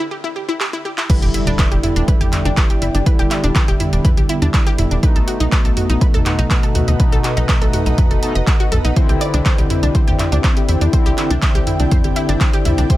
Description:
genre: melodic techno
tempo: 122 BPM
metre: 4/4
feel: straight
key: E minor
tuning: A4 = 439 Hz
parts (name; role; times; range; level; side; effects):
- analog pluck; arpeggios; 0.0-13.0 s; D4 to A6; -24 LUFS; equal; chorus, sidechain pumping, dub echo
- techno drum kit; drums; 0.6-13.0 s; crash cymbal, handclaps, hi-hat, toms; -22 LUFS; right 1 dB; overdrive, high-pass filter on snare, high-pass filter on hats, high-pass filter on toms, high-pass filter on cymbals
- dark analog pad; sustained chords; 1.4-13.0 s; A3 to G5; -26 LUFS; equal; chorus, phaser, sidechain pumping
- analog synth brass; stabs; 1.1-13.0 s; B2 to G4; -22 LUFS; left 2 dB; chorus, vintage 12-bit sampler grit, sidechain pumping, dub echo
- electronic kick drum; drums; 1.1-13.0 s; none; -15 LUFS; equal; overdrive
- impact; sound effects; 1.1-3.1 s; none; -27 LUFS; equal; none
- tight sequencer bass; bass; 1.2-12.9 s; E1 to E2; -17 LUFS; equal; tube saturation, sidechain pumping
- ethereal airy pad; texture; 6.0-13.0 s; E4 to G5; -31 LUFS; right 1 dB; ensemble chorus, built-in reverb, tremolo, sidechain pumping
room: little or no reverb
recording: none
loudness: -13 LUFS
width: side -16 dB against mid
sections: 0.0-1.1 A section; 1.1-13.0 B section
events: break 0.0-1.1; build-up 0.0-1.1; drum fill 0.6-1.1; drop 1.1-13.0; impact 1.1-3.1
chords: 0.0 A7(no3) (rootless); 1.1 Em7; 5.0 B7; 9.0 Cadd9

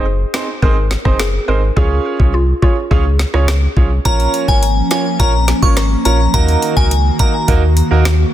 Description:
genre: dancehall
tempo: 105 BPM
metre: 4/4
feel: straight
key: Bb minor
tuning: A4 = 440 Hz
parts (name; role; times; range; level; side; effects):
- mallet-like synth pluck; second line; 0.0-3.7 s; F4 to Bb4; -23 LUFS; left 2 dB; chorus, digital delay
- bright concert grand piano; accompaniment; 0.0-8.0 s; Bb3 to Db5; -20 LUFS; right 6 dB; sidechain pumping
- warm sub bass; bass; 0.0-8.2 s; Gb1 to Eb2; -14 LUFS; equal; none
- island pop drum kit; drums; 0.3-8.2 s; hi-hat, kick drum, rim click, snare drum; -16 LUFS; equal; none
- glassy synth bell; melody; 4.1-7.4 s; Ab5 to Db6; -18 LUFS; left 2 dB; chorus, digital delay
- airy breathy pad; sustained chords; 4.1-8.3 s; Eb3 to Gb4; -20 LUFS; equal; chorus, sidechain pumping
room: digital ambience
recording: dense, heavily limited modern master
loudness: -11 LUFS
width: side -12 dB against mid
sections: 0.0-4.1 A section; 4.1-8.3 B section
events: none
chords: 0.0 Ab; 1.8 Db; 4.1 Bbm; 6.3 Ebm

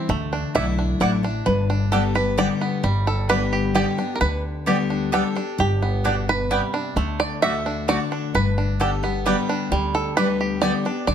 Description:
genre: bluegrass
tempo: 131 BPM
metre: 3/4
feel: straight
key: G major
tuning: A4 = 441 Hz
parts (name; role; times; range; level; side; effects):
- bluegrass banjo; melody; 0.0-11.1 s; G3 to E5; -24 LUFS; right 3 dB; plate reverb
- picked steel-string acoustic guitar; accompaniment; 0.0-11.1 s; G2 to G4; -25 LUFS; left 5 dB; none
- upright bass; bass; 0.1-11.1 s; G1 to D2; -25 LUFS; equal; none
- mandolin; stabs; 0.5-10.7 s; A3 to G5; -26 LUFS; right 4 dB; none
room: moderate studio reverb, RT60 0.7 s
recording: none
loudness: -19 LUFS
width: side -8 dB against mid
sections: 0.0-2.8 A section; 2.8-11.1 A section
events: five-string banjo solo 0.0-11.1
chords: 0.1 Dadd9; 1.5 G; 7.0 D; 8.3 G

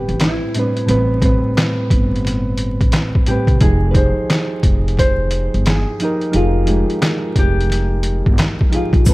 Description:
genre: lo-fi hip hop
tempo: 88 BPM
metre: 4/4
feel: swing 64% on 16ths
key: unclear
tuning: A4 = 442 Hz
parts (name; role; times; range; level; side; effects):
- nylon-string guitar; melody; 0.0-9.1 s; Eb4 to C5; -23 LUFS; left 1 dB; low-pass filter, tape echo
- soft electric-piano-like synth keys; accompaniment; 0.0-9.1 s; A2 to B4; -20 LUFS; right 1 dB; chorus, cassette tape, low-pass filter
- upright bass; bass; 0.0-9.1 s; F1 to C2; -18 LUFS; equal; none
- trip hop sampler-style drum kit; drums; 0.1-9.1 s; handclaps, hi-hat, kick drum, snare drum; -16 LUFS; equal; overdrive
- tube shaker; percussion; 9.1 s; none; -25 LUFS; left 3 dB; none
room: small room ambience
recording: vinyl crackle, faint mains hum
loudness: -14 LUFS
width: side -20 dB against mid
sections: 0.0-9.1 A section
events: none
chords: 0.0 Am9; 3.6 Fm9

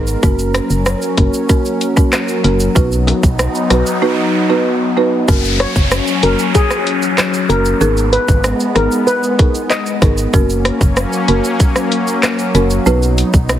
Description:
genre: dancehall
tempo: 95 BPM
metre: 4/4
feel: straight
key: F# major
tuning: A4 = 440 Hz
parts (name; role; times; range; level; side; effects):
- folk marimba with medium mallets; accompaniment; 0.0-13.6 s; A#3 to B4; -18 LUFS; right 2 dB; sidechain pumping
- warm analog pad; sustained chords; 0.0-13.6 s; F#3 to A#4; -19 LUFS; left 2 dB; chorus, sidechain pumping
- organ-like FM bass; bass; 0.0-13.6 s; F#1 to B1; -16 LUFS; equal; none
- island pop drum kit; drums; 0.1-13.6 s; handclaps, hi-hat, kick drum, rim click, shaker; -15 LUFS; equal; none
- tube shaker and timbales; percussion; 0.1-13.6 s; none; -30 LUFS; right 3 dB; none
- noise sweep and downlifter; sound effects; 3.3-10.3 s; none; -23 LUFS; right 1 dB; none
- steel pan; melody; 5.6-10.1 s; G#4 to D#5; -18 LUFS; left 2 dB; ping-pong delay
room: light reverb, digital ambience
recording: heavily compressed radio sound, multiband compression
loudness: -12 LUFS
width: side -11 dB against mid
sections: 0.0-5.3 A section; 5.3-13.6 B section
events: noise sweep 3.3-5.3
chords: 0.2 F#; 2.8 B; 5.3 F#; 7.8 G#madd9; 10.3 F#; 12.9 B

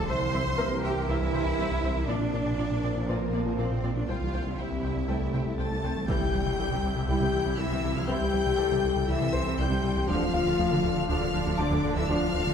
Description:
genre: cinematic, hybrid orchestral and electronic film score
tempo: 120 BPM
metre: 4/4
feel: straight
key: unclear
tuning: A4 = 440 Hz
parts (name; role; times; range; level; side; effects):
- rich studio violin section; second line; 0.0-12.5 s; Bb4 to C6; -37 LUFS; left 2 dB; none
- warm trombone section; sustained chords; 0.0-12.3 s; F2 to E4; -36 LUFS; right 4 dB; none
- harp-like synth pluck; arpeggios; 0.0-12.5 s; C3 to Bb4; -36 LUFS; equal; chorus, digital delay
- rubbery square bass; riff; 0.0-12.5 s; C2 to Bb3; -33 LUFS; left 2 dB; none
- clear symphonic double bass section; bass; 0.0-12.5 s; Bb1 to D2; -35 LUFS; right 3 dB; none
- rich symphonic cello section; bass; 0.0-12.5 s; D3 to C5; -33 LUFS; right 3 dB; none
- snarling distorted saw bass; bass; 0.0-12.5 s; D1 to C2; -35 LUFS; equal; distortion
- felt-muted upright piano; texture; 0.0-12.5 s; A3 to A5; -37 LUFS; left 2 dB; digital delay
- rich symphonic violin section; melody; 0.1-12.5 s; E5 to A6; -38 LUFS; left 2 dB; none
- rich symphonic viola section; accompaniment; 0.1-12.5 s; C3 to G5; -37 LUFS; right 1 dB; none
- mellow French horn section; sustained chords; 0.1-12.5 s; Bb3 to Bb4; -33 LUFS; left 7 dB; none
- impact; sound effects; 6.1-8.1 s; none; -34 LUFS; equal; none
room: moderate scoring stage reverb, RT60 1.7 s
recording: none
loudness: -25 LUFS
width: side -7 dB against mid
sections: 0.0-6.1 A section; 6.1-12.5 B section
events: impact 6.1-8.1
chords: 0.1 C; 2.1 Bb; 4.1 C; 10.1 Dm

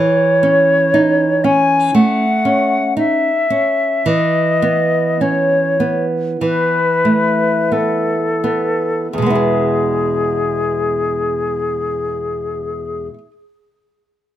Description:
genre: romantic duo for flute and classical guitar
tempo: 40-61 BPM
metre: 4/4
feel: rubato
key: E major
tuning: A4 = 441 Hz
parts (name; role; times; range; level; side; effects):
- silver concert flute; melody; 0.0-13.1 s; G#4 to G#5; -16 LUFS; left 2 dB; plate reverb
- nylon-string guitar; accompaniment; 0.0-13.3 s; E2 to G#4; -17 LUFS; right 2 dB; none
room: moderate small room reverb, RT60 0.5 s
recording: none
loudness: -13 LUFS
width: side -12 dB against mid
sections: 0.0-9.1 A section; 9.1-14.3 B section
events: slowing down 0.0-9.1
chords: 0.0 A/E; 4.1 B7/E; 9.1 E

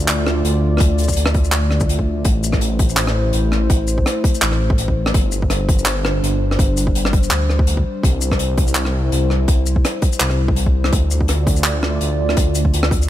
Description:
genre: half-time drum and bass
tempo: 166 BPM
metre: 4/4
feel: swing 55% on 16ths, half-time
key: unclear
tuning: A4 = 439 Hz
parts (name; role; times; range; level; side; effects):
- dark analog pad; sustained chords; 0.0-13.1 s; G3 to D5; -23 LUFS; left 1 dB; chorus, sidechain pumping
- dark detuned saw bass; bass; 0.0-13.1 s; G1 to D2; -18 LUFS; equal; tube saturation
- crisp fusion drum kit; drums; 0.0-13.1 s; handclaps, hi-hat, rim click, shaker; -21 LUFS; equal; none
- electronic kick drum; drums; 0.8-13.0 s; none; -17 LUFS; equal; overdrive
room: studio reverb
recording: none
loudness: -15 LUFS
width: side -13 dB against mid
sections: 0.0-13.1 A section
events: none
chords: 0.0 Dm; 2.3 Am; 5.1 Gsus4; 8.0 C; 10.9 Dm

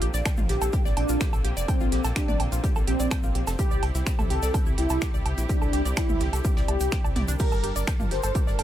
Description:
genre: melodic techno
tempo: 126 BPM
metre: 4/4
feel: straight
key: unclear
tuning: A4 = 440 Hz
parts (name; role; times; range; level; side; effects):
- rich studio string section; sustained chords; 0.0-8.6 s; C3 to Bb4; -36 LUFS; right 2 dB; sidechain pumping
- analog pluck; arpeggios; 0.0-8.6 s; D4 to G5; -34 LUFS; equal; chorus, phaser, sidechain pumping, ping-pong delay
- round analog bass; bass; 0.0-8.6 s; F1 to C2; -27 LUFS; equal; tube saturation, sidechain pumping
- techno drum kit; drums; 0.0-8.6 s; crash cymbal, finger snaps, hi-hat, toms, woodblock; -32 LUFS; right 3 dB; none
- vintage brush drum kit; drums; 0.0-8.6 s; hi-hat, snare drum; -46 LUFS; right 2 dB; none
- egg shaker; percussion; 0.1-8.6 s; none; -40 LUFS; left 4 dB; none
- electronic kick drum; drums; 0.3-8.4 s; none; -25 LUFS; equal; none
- mellow synth brass; melody; 0.5-8.6 s; C4 to C5; -31 LUFS; equal; chorus, sidechain pumping, ping-pong delay
room: little or no reverb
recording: none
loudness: -22 LUFS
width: side -12 dB against mid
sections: 0.0-8.6 A section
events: none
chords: 0.0 Bbadd9; 3.6 C; 7.4 Gmadd9

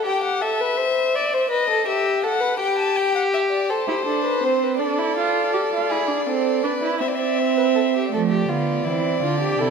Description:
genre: classical, baroque-style fugue for string quartet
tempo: 54 BPM (dotted quarters)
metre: 6/8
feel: straight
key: A minor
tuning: A4 = 438 Hz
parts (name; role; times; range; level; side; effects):
- dark violin; second line; 0.0-9.7 s; E4 to D5; -23 LUFS; left 1 dB; none
- dark violin; melody; 0.1-9.7 s; C5 to A5; -24 LUFS; left 6 dB; none
- warm viola; accompaniment; 3.9-9.7 s; A3 to G4; -22 LUFS; right 8 dB; none
- dark cello; bass; 8.1-9.7 s; C3 to F3; -24 LUFS; right 5 dB; none
room: wet scoring stage reverb, RT60 2.0 s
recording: minimal, uncompressed stereo recording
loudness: -19 LUFS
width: side -5 dB against mid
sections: 0.0-8.1 A section; 8.1-9.7 B section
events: none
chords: 0.4 Am (rootless); 1.5 B7; 2.6 N.C.; 3.7 Am; 4.8 Dmadd9; 5.9 E7; 7.0 Am/C (rootless); 8.1 Dm7

